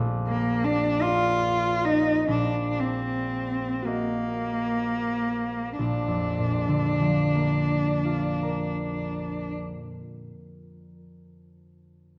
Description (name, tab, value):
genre	classical, romantic duo for cello and harp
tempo	28-55 BPM (dotted quarters)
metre	6/8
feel	rubato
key	Bb major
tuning	A4 = 440 Hz
part	concert harp	accompaniment	0.0-10.9 s	Bb1 to Eb5	-30 LUFS	equal	none
part	rich cello	melody	0.3-9.5 s	Bb3 to F4	-28 LUFS	equal	none
room	wet recital hall reverb, RT60 1.4 s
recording	worn, warbling old tape, cassette tape, warbly pitch drift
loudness	-26 LUFS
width	mono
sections	0.0-5.8 A section; 5.8-9.4 B section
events	slowing down 0.0-5.8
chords	0.0 Bb; 2.3 Ebm/Bb; 5.8 Bb